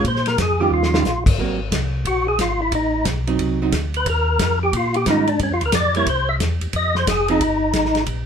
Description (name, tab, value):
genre	soul jazz organ trio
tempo	179 BPM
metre	4/4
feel	swing 64% on 8ths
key	unclear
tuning	A4 = 442 Hz
part	percussive tonewheel organ	melody	0.0-8.0 s	Db4 to E5	-19 LUFS	left 1 dB	slow rotary speaker, overdrive, chorus vibrato
part	archtop guitar, miked and amplified	accompaniment	0.0-7.4 s	Eb3 to Ab4	-22 LUFS	right 6 dB	none
part	mellow tonewheel organ	bass	0.0-8.3 s	F1 to Bb2	-23 LUFS	equal	slow rotary speaker
part	warm soul drum kit	drums	0.0-8.2 s	crash cymbal, hi-hat, kick drum, ride cymbal, snare drum	-23 LUFS	left 1 dB	none
room	moderate club reverb, RT60 0.6 s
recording	minimal, uncompressed stereo recording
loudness	-17 LUFS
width	side -7 dB against mid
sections	0.0-8.3 A section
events	tonewheel organ solo 0.0-8.3; drum fill 0.7-1.1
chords	0.0 Bbm; 0.7 Eb9; 1.4 Ab9; 2.7 Adim7; 4.1 Eb9; 5.4 Gm7; 6.1 C; 6.7 Fm7